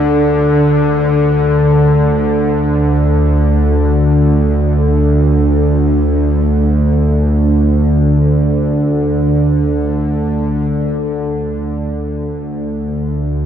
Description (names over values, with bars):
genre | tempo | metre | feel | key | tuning
ambient | free time | none | none | unclear | A4 = 440 Hz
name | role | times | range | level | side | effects
bowed-like drone | solo | 0.0-13.5 s | D2 to D3 | -11 LUFS | equal | built-in reverb, tape echo
room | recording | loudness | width
wet huge ambient reverb, RT60 7.5 s | in a vast, echoing space, nothing above 10.4 kHz | -11 LUFS | side -9 dB against mid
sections
0.0-10.7 A section; 10.7-13.5 B section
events
none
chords
none